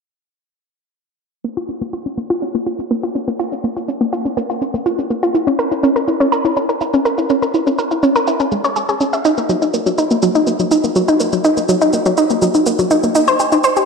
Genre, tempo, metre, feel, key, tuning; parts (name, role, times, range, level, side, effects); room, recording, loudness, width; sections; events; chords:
melodic techno; 123 BPM; 4/4; straight; A4 = 440 Hz
analog pluck; arpeggios; 1.4-13.8 s; Gb3 to Fb5; -14 LUFS; equal; chorus, ping-pong delay
shaker; drums; 1.4-13.9 s; -28 LUFS; right 1 dB; low-pass filter on perc
wet lush hall reverb, RT60 1.9 s; dreamy mix soaked in reverb; -14 LUFS; side -5 dB against mid
1.4-13.9 A section
filter sweep on synth arpeggio sound 1.4-13.9